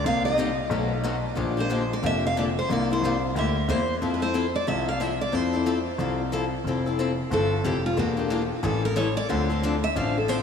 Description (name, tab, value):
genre	acoustic string swing (jazz manouche)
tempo	182 BPM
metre	4/4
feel	swing 61% on 8ths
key	F major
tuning	A4 = 437 Hz
part	picked steel-string acoustic guitar	melody	0.0-10.4 s	F4 to F5	-27 LUFS	right 1 dB	diffuse ambient delay
part	clear concert grand piano	bass	0.0-10.4 s	E1 to F2	-27 LUFS	left 1 dB	none
part	picked swing-style acoustic guitar	accompaniment	0.1-10.4 s	B2 to A4	-27 LUFS	left 4 dB	none
room	moderate huge ambient reverb, RT60 6.8 s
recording	dreamy mix soaked in reverb, studio reverb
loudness	-23 LUFS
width	side -7 dB against mid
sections	0.0-6.7 A section; 6.7-10.4 B section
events	steel-string acoustic guitar solo 6.7-10.4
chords	0.0 Cm7; 0.7 B7; 1.4 Bb69; 2.7 C7; 4.0 Fmaj7; 8.0 Em7b5; 8.6 A7; 9.3 Dm7